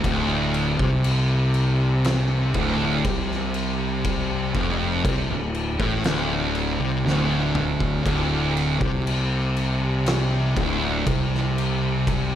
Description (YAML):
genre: stoner and doom metal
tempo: 60 BPM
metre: 4/4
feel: straight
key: unclear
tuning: A4 = 438 Hz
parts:
  - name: thick fuzz guitar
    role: riff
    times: 0.0-12.4 s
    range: D2 to C3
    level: -24 LUFS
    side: left 4 dB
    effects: distortion
  - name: thick fuzz guitar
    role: riff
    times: 0.0-12.4 s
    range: D2 to C3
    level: -26 LUFS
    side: right 9 dB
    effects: distortion
  - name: fuzz fingered electric bass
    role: bass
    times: 0.0-12.4 s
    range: D1 to C2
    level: -27 LUFS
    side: equal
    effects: overdrive
  - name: oversized low-tuned drum kit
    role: drums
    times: 0.0-12.3 s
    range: crash cymbal, kick drum, snare drum, toms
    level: -27 LUFS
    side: equal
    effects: none
room: light reverb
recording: none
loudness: -20 LUFS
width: side -10 dB against mid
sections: 0.0-12.4 A section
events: drum fill 7.0-8.1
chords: none